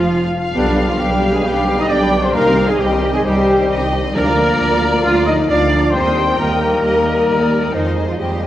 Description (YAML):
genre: classical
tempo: 133 BPM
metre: 4/4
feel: straight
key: C minor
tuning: A4 = 440 Hz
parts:
  - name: rich symphonic violin section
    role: melody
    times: 0.0-8.5 s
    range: C5 to G5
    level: -24 LUFS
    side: left 2 dB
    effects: none
  - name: hollow small flute group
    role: second line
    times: 0.0-8.5 s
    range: D5 to F6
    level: -24 LUFS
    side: left 2 dB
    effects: none
  - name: warm clarinet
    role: second line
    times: 0.0-8.5 s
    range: D4 to F5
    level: -24 LUFS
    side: left 1 dB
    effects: none
  - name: warm symphonic violin section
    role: second line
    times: 0.0-8.5 s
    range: F4 to Eb6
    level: -28 LUFS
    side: left 2 dB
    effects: none
  - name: rich symphonic viola section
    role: accompaniment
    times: 0.0-8.5 s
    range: Eb3 to Eb5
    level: -23 LUFS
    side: equal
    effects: none
  - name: dark trombone section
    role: sustained chords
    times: 0.0-8.5 s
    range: D3 to Ab3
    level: -23 LUFS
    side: right 2 dB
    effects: none
  - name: mellow French horn section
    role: sustained chords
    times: 0.0-8.5 s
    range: D3 to F4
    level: -20 LUFS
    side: left 2 dB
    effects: none
  - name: rich symphonic double bass section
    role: bass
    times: 0.0-8.5 s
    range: F1 to F2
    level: -21 LUFS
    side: right 2 dB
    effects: none
  - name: warm symphonic cello section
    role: bass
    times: 0.0-8.5 s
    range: D4 to Eb5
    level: -21 LUFS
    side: right 2 dB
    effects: none
room: wet concert hall reverb, RT60 2.2 s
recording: worn, warbling old tape, cassette tape, warbly pitch drift, nothing above 10.9 kHz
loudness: -13 LUFS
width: side -13 dB against mid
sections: 0.0-8.5 A section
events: none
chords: 0.0 N.C.; 0.6 G/B; 2.4 Cm; 4.2 Bb/D; 5.9 Eb; 7.7 Fm7